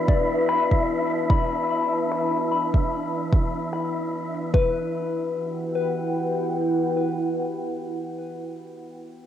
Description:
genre	ambient dub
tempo	74 BPM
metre	4/4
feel	swing 55% on 16ths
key	E minor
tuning	A4 = 440 Hz
part	deep dark ambient pad	sustained chords	0.0-8.5 s	E4 to B5	-26 LUFS	equal	chorus, built-in reverb, cassette tape
part	soft synth bell	arpeggios	0.0-9.3 s	B4 to B5	-28 LUFS	left 5 dB	chorus, phaser, low-pass filter, cassette tape, tape echo, plate reverb
part	wind-like tuned noise texture	texture	0.0-4.6 s	D4 to E5	-30 LUFS	equal	built-in reverb, cassette tape, plate reverb
part	electronic kick drum	drums	0.1-4.7 s	none	-20 LUFS	right 1 dB	cassette tape
part	finger snaps and shaker	drums	0.5-3.9 s	none	-42 LUFS	equal	none
room	moderate studio reverb, RT60 0.6 s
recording	home recording on cassette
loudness	-22 LUFS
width	side -10 dB against mid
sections	0.0-4.5 A section; 4.5-7.8 B section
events	none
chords	0.0 E7(no3); 4.5 Em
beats	0.49 | 1.30 2.11 2.92 3.73 | 4.54 5.35 6.16 6.97

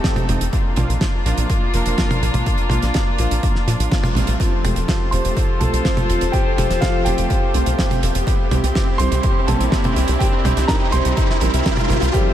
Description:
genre	italo disco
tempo	124 BPM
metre	4/4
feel	straight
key	F major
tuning	A4 = 440 Hz
part	rich chamber string section	sustained chords	0.0-12.3 s	F3 to C5	-24 LUFS	left 1 dB	vintage 12-bit sampler grit, low-pass filter
part	analog synth brass	stabs	0.0-12.0 s	F3 to C5	-26 LUFS	right 3 dB	chorus, ping-pong delay
part	damped 70s drum kit	drums	0.0-12.2 s	cabasa, hi-hat, snare drum, toms	-23 LUFS	right 1 dB	small room ambience
part	electronic kick drum	drums	0.0-12.2 s	none	-20 LUFS	equal	small room ambience
part	tight sequencer bass	bass	0.3-12.1 s	F1 to Bb2	-20 LUFS	equal	tube saturation
part	riser	sound effects	7.0-12.1 s	none	-28 LUFS	equal	none
part	warm baby grand piano	melody	5.1-12.3 s	G3 to C6	-25 LUFS	right 1 dB	low-pass filter, tape echo
room	moderate huge ambient reverb, RT60 9.2 s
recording	dreamy mix soaked in reverb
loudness	-16 LUFS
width	side -11 dB against mid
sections	0.0-4.4 A section; 4.4-12.1 B section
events	band accent 3.9; filter sweep on analog polysynth 4.4-12.1; filter sweep on grand piano 4.4-12.1; riser 7.0-12.1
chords	0.0 F7; 0.5 Bb; 4.4 Fadd9; 8.3 C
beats	0.04 | 0.53 1.01 1.50 1.98 | 2.46 2.95 3.43 3.92 | 4.40 4.88 5.37 5.85 | 6.33 6.82 7.30 7.79 | 8.27 8.75 9.24 9.72 | 10.21 10.69 11.17 11.66 | 12.14

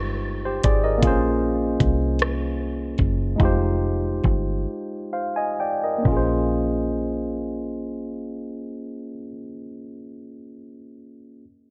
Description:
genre	slow six-eight R&B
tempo	42-52 BPM (dotted quarters)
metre	6/8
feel	straight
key	Bb minor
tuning	A4 = 440 Hz
part	barky tine electric piano	accompaniment	0.0-11.5 s	Ab3 to Ab5	-27 LUFS	equal	none
part	deep dub fingered electric bass	bass	0.0-9.2 s	F1 to C2	-28 LUFS	equal	none
part	smooth R&B drum kit	drums	0.6-6.3 s	crash cymbal, hi-hat, kick drum, rim click	-25 LUFS	equal	none
room	moderate plate reverb, RT60 3.1 s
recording	bright 1980s-style digital production, low-pass filter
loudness	-23 LUFS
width	mono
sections	0.0-6.0 A section; 6.0-8.9 B section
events	filter sweep 0.0-6.0; slowing down 1.0-6.0; break 4.7-6.0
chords	0.0 Fm9; 1.0 Bbm9; 3.4 Fm9; 6.0 Bbm9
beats	| 1.02 2.19 | 3.39 4.67 | 6.05 7.49

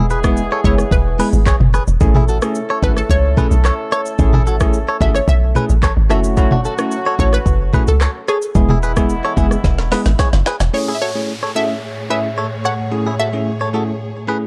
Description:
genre	afrobeats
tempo	110 BPM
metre	4/4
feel	straight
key	A major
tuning	A4 = 440 Hz
part	hollow square pluck	melody	0.0-14.0 s	G#4 to F#5	-24 LUFS	equal	chorus, digital delay
part	warm horn section	second line	0.0-10.4 s	E3 to A4	-28 LUFS	equal	none
part	direct-recorded clean electric guitar	riff	0.0-14.4 s	D4 to C#5	-24 LUFS	equal	digital delay
part	deep log drum bass	bass	0.0-10.7 s	E1 to C#2	-18 LUFS	equal	none
part	afro-pop drum kit	drums	0.1-10.7 s	handclaps, hi-hat, kick drum, rim click, shaker, snare drum, toms	-19 LUFS	equal	vintage 12-bit sampler grit
part	bell-like tine electric piano	accompaniment	0.2-14.5 s	G#3 to G#4	-24 LUFS	equal	analog chorus
part	warm studio string section	sustained chords	10.7-14.5 s	A2 to C#5	-27 LUFS	equal	none
part	downlifter	sound effects	10.7-14.5 s	none	-34 LUFS	equal	none
room	little or no reverb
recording	dark, warm production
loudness	-16 LUFS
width	mono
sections	0.0-10.7 A section; 10.7-14.5 B section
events	drum fill 9.6-10.7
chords	0.0 E; 2.0 Amaj7; 6.1 F#m7; 8.6 E; 10.7 Amaj7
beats	0.37 0.92 1.46 | 2.01 2.55 3.10 3.64 | 4.19 4.74 5.28 5.83 | 6.37 6.92 7.46 8.01 | 8.55 9.10 9.64 10.19 | 10.73 11.28 11.83 12.37 | 12.92 13.46 14.01

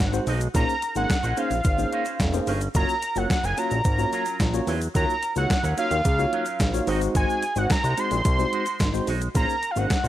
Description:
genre	early-eighties boogie funk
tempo	109 BPM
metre	4/4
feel	straight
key	Eb dorian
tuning	A4 = 438 Hz
part	fat analog lead	melody	0.0-10.1 s	F5 to C6	-26 LUFS	right 1 dB	none
part	electric guitar with an envelope filter	riff	0.0-10.1 s	Gb3 to Eb5	-35 LUFS	right 6 dB	wide subtle chorus
part	fat analog bass	bass	0.0-10.1 s	F1 to Fb2	-26 LUFS	equal	none
part	crisp 8-bit digital drum machine	drums	0.0-10.0 s	hi-hat, kick drum, snare drum	-25 LUFS	equal	overdrive
part	egg shaker	percussion	0.0-10.1 s	none	-41 LUFS	left 6 dB	none
part	tine electric piano	accompaniment	0.1-9.9 s	Ab3 to Db5	-29 LUFS	left 2 dB	medium stereo tremolo
room	little or no reverb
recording	none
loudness	-21 LUFS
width	side -13 dB against mid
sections	0.0-10.1 A section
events	none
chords	0.0 Ab7; 0.5 Bbm11; 2.7 Gbmaj7; 4.9 Ebm9; 6.9 Ab7; 9.4 Bbm11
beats	| 0.55 1.10 1.65 2.20 | 2.75 3.30 3.85 4.40 | 4.95 5.50 6.05 6.60 | 7.15 7.70 8.25 8.80 | 9.35 9.90

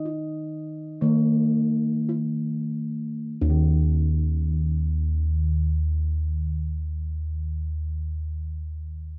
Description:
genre	Javanese gamelan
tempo	46-66 BPM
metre	4/4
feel	straight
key	unclear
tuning	A4 = 438 Hz
part	gamelan-type bronze metallophone	accompaniment	0.0-7.1 s	Eb3 to Eb4	-26 LUFS	equal	cassette tape
part	gamelan-type bossed gongs	bass	0.0-7.0 s	Eb2 to Eb5	-24 LUFS	equal	none
room	small room ambience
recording	home recording on cassette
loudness	-22 LUFS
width	side -30 dB against mid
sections	0.0-3.3 A section; 3.3-8.5 B section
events	slowing down 0.0-3.3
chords	none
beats	0.06 1.02 2.09 | 3.30 4.60 5.90

